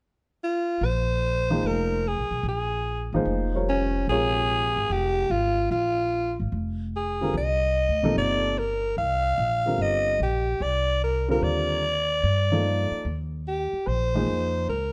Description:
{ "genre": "modal jazz", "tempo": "147 BPM", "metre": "4/4", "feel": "swing 67% on 8ths", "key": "unclear", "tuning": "A4 = 436 Hz", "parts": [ { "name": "growling alto saxophone", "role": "melody", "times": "0.4-14.9 s", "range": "Db4 to F5", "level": "-27 LUFS", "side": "equal", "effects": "none" }, { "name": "upright bass", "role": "bass", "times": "0.8-14.9 s", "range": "F1 to G2", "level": "-30 LUFS", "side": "equal", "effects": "none" }, { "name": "dark upright piano", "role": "accompaniment", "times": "1.5-14.7 s", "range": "C3 to D5", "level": "-30 LUFS", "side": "equal", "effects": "none" } ], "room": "light reverb", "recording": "none", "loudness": "-25 LUFS", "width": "mono", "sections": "0.8-14.9 A section", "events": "none", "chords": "0.0 N.C.; 0.8 Bbm9; 7.4 Cm9; 13.9 Bbm9" }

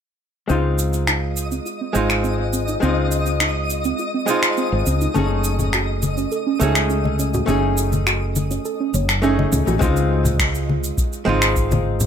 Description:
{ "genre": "sunset chillout", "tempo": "103 BPM", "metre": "4/4", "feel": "straight", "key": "Db major", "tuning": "A4 = 440 Hz", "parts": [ { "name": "archtop guitar, miked and amplified", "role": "accompaniment", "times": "0.5-12.1 s", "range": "Ab3 to Ab4", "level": "-23 LUFS", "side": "moving between left 4 dB and right 4 dB", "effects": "auto-pan, low-pass filter, ping-pong delay" }, { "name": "soft round pluck", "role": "arpeggios", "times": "0.5-9.8 s", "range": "C4 to Eb5", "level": "-26 LUFS", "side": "right 5 dB", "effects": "chorus, ping-pong delay" }, { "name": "woody fretless electric bass", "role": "bass", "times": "0.5-12.1 s", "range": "Gb1 to Db2", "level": "-21 LUFS", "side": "equal", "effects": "tube saturation, analog chorus" }, { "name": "electronic cabasa and finger snaps", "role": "drums", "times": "0.5-12.1 s", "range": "none", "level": "-23 LUFS", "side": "equal", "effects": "none" }, { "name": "twinkling granular texture", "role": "texture", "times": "1.3-9.8 s", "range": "Eb5 to Eb6", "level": "-30 LUFS", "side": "left 3 dB", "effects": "built-in reverb" }, { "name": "congas", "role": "percussion", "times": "5.2-12.1 s", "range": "none", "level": "-25 LUFS", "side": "left 2 dB", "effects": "none" }, { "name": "electronic kick drum", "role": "drums", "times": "9.8-11.7 s", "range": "none", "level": "-21 LUFS", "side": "equal", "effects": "none" } ], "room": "light reverb, digital ambience", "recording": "none", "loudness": "-17 LUFS", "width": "side -8 dB against mid", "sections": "0.5-9.8 A section; 9.8-12.1 B section", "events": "filter sweep on synth arpeggio sound 0.5-9.8", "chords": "0.5 Dbmaj9; 5.2 Gbm6; 9.8 Dbmaj9" }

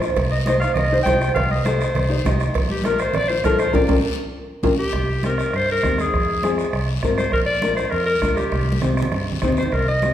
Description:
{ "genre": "latin, cumbia", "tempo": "201 BPM", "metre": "4/4", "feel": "straight", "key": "C minor from 4.9 s", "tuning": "A4 = 437 Hz", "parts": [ { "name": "nylon-string guitar", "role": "accompaniment", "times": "0.0-10.1 s", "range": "C4 to Eb5", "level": "-24 LUFS", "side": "left 2 dB", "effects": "none" }, { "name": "fingered electric bass", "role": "bass", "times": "0.0-10.1 s", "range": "Bb1 to Ab2", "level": "-24 LUFS", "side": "equal", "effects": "none" }, { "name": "bombo", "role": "percussion", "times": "0.0-10.1 s", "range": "none", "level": "-25 LUFS", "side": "right 1 dB", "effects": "none" }, { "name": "guiro", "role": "percussion", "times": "0.0-10.1 s", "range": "none", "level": "-36 LUFS", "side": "left 6 dB", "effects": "none" }, { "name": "congas", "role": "percussion", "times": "0.2-10.1 s", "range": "none", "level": "-29 LUFS", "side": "right 1 dB", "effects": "none" }, { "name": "cowbell and timbales", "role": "percussion", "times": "0.2-4.7 s", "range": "none", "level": "-28 LUFS", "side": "right 3 dB", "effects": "none" }, { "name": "bright clarinet", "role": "melody", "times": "0.3-10.1 s", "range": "G4 to G5", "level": "-22 LUFS", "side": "left 1 dB", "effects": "none" } ], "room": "wet recital hall reverb, RT60 1.6 s", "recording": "recorded in a church or concert hall", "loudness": "-17 LUFS", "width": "side -11 dB against mid", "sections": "0.0-4.9 A section; 4.9-10.1 B section", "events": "drum fill 3.7-4.9, 8.5-9.7; band accent 3.7-4.9", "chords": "0.2 Cm; 2.5 Bb; 4.9 Cm; 6.1 Fm; 7.3 Bb; 8.5 Cm" }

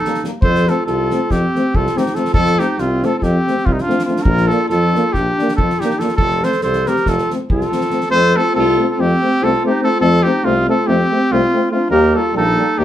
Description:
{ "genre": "balkan folk, Balkan brass band", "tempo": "282 BPM (eighths)", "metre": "9/8", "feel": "straight", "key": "F mixolydian", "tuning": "A4 = 437 Hz", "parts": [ { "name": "warm trumpet", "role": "melody", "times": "0.0-12.8 s", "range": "Eb4 to C5", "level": "-18 LUFS", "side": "equal", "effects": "none" }, { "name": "warm clarinet", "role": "second line", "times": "0.0-12.8 s", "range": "C4 to A4", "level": "-21 LUFS", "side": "equal", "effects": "none" }, { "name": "unplugged drum kit", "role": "percussion", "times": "0.0-8.1 s", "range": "kick drum, snare drum", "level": "-21 LUFS", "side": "equal", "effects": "none" }, { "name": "mellow euphonium", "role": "accompaniment", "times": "0.1-12.8 s", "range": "G3 to Bb3", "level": "-24 LUFS", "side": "right 3 dB", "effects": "none" }, { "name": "warm French horn", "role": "accompaniment", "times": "0.1-12.8 s", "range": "Bb3 to D4", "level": "-22 LUFS", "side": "left 4 dB", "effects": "none" }, { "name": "clear tuba", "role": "bass", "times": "0.4-12.8 s", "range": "F1 to F2", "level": "-19 LUFS", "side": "equal", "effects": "none" } ], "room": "wet small room reverb, RT60 0.5 s", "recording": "band playing live in one room", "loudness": "-13 LUFS", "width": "side -11 dB against mid", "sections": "0.0-8.1 A section; 8.1-12.8 A section", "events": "none", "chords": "0.4 F; 4.3 Bb; 6.2 F; 11.9 Eb" }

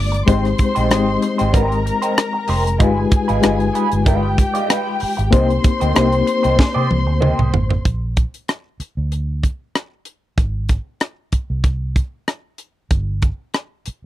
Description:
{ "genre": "lush 1970s-style soul", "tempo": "95 BPM", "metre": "4/4", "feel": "swing 54% on 16ths", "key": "unclear", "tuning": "A4 = 440 Hz", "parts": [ { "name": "dark studio violin section", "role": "second line", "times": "0.0-7.8 s", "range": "G4 to D6", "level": "-23 LUFS", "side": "left 2 dB", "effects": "none" }, { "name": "reed electric piano", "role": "accompaniment", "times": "0.0-7.9 s", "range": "Ab3 to Eb5", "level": "-20 LUFS", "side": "left 5 dB", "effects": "fast tremolo" }, { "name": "vintage muted fingered electric bass", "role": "bass", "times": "0.0-13.9 s", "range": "F1 to C3", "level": "-20 LUFS", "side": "right 1 dB", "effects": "none" }, { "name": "electric guitar through a small old amp", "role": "riff", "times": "0.1-7.7 s", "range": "Ab3 to D5", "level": "-23 LUFS", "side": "right 3 dB", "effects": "wah" }, { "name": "tight funk drum kit", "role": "drums", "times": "0.1-14.0 s", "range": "hi-hat, kick drum, rim click, snare drum, toms", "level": "-17 LUFS", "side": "right 1 dB", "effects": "none" } ], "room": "little or no reverb", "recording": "dry, close 1970s-style studio recording", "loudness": "-16 LUFS", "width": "side -14 dB against mid", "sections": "0.0-7.8 A section; 7.8-14.1 B section", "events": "drum fill 6.6-7.8", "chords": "0.3 Abmaj7; 2.8 G7b9b13; 5.3 Cm7; 7.8 Bb; 10.4 Ab; 12.9 N.C." }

